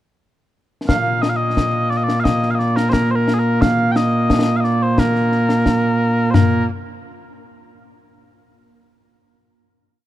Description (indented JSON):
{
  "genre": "scottish traditional, Scottish pipe music",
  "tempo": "88 BPM",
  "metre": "2/4",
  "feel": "straight",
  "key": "Bb major",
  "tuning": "A4 = 440 Hz",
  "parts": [
    { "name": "mellow small bagpipes", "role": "melody", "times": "0.9-6.7 s", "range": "Bb2 to G5", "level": "-16 LUFS", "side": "right 1 dB", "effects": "none" },
    { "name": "concert snare drum, concert bass drum and concert toms", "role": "drums", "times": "0.9-6.5 s", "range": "none", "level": "-20 LUFS", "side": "left 2 dB", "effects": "none" }
  ],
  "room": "light reverb",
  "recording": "dark, warm production",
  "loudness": "-15 LUFS",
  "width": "side -13 dB against mid",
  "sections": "0.9-6.3 A section; 6.3-7.7 final note",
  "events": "none",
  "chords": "none"
}